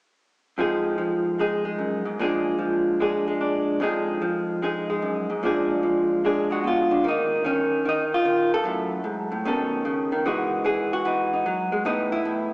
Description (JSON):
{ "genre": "solo jazz", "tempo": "149 BPM", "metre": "4/4", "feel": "swing 66% on 8ths", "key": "Eb minor", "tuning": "A4 = 439 Hz", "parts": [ { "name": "vintage hollow-body jazz guitar", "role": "solo", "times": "0.6-12.5 s", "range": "F2 to A4", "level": "-21 LUFS", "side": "equal", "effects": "none" } ], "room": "wet church reverb, RT60 2.4 s", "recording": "recorded in a church or concert hall, small speaker sound", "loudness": "-21 LUFS", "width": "side -24 dB against mid", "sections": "0.6-7.0 A section; 7.0-12.5 B section", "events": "none", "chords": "0.6 Fm7; 2.2 Bb7; 3.8 Fm7; 5.4 Bb7b9; 7.0 Ebsus2; 8.6 Gbm9; 9.5 B9; 10.3 Emaj9; 11.9 Asus2", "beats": "| 0.57 0.98 1.38 1.79 | 2.19 2.60 3.00 3.41 | 3.81 4.21 4.62 5.02 | 5.42 5.83 6.23 6.63 | 7.04 7.44 7.84 8.25 | 8.65 9.05 9.45 9.85 | 10.26 10.66 11.06 11.46 | 11.86 12.26" }